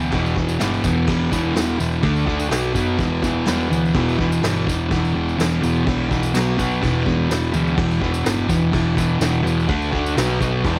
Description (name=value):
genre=garage rock duo or trio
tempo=126 BPM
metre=4/4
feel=straight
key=unclear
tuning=A4 = 441 Hz
part: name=fuzz guitar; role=riff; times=0.0-10.8 s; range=E2 to D4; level=-21 LUFS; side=equal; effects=distortion
part: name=hollow-body short-scale picked electric bass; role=bass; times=0.0-10.8 s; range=E1 to F#2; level=-28 LUFS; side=equal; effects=none
part: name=tambourine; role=percussion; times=0.0-10.7 s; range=none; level=-39 LUFS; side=equal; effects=none
part: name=vintage brush drum kit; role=drums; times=0.1-10.8 s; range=crash cymbal, kick drum, snare drum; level=-28 LUFS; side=equal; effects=none
room=small room ambience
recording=home recording on cassette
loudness=-20 LUFS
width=mono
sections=0.0-10.8 A section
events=none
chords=0.0 E5; 2.0 D5; 2.5 B5; 3.0 E5; 6.3 B5; 6.8 E5; 9.7 D5; 10.2 B5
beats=0.13 0.61 | 1.09 1.57 2.05 2.52 | 3.00 3.48 3.96 4.43 | 4.91 5.39 5.87 6.34 | 6.82 7.30 7.78 8.26 | 8.73 9.21 9.69 10.17 | 10.65